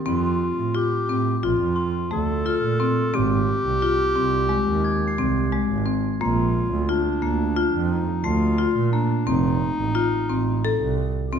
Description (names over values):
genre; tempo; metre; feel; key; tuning
contemporary instrumental, chamber music in an uneven meter; 176 BPM (eighths); 9/8; straight; unclear; A4 = 441 Hz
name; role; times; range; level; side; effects
mellow clarinet; second line; 0.1-11.4 s; D4 to A4; -25 LUFS; left 1 dB; none
marimba with medium hard mallets; arpeggios; 0.1-11.4 s; Ab3 to A4; -24 LUFS; left 4 dB; none
rich double bass; bass; 0.1-11.4 s; F1 to Bb2; -24 LUFS; right 5 dB; none
glockenspiel with hard plastic mallets; texture; 1.8-9.0 s; C6 to C7; -37 LUFS; equal; none
room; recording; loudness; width
moderate scoring stage reverb, RT60 1.5 s; dark, warm production; -20 LUFS; side -7 dB against mid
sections
0.0-11.4 A section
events
none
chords
0.1 F; 1.4 Bbmaj7; 3.1 Ab; 6.2 Bb; 9.3 F7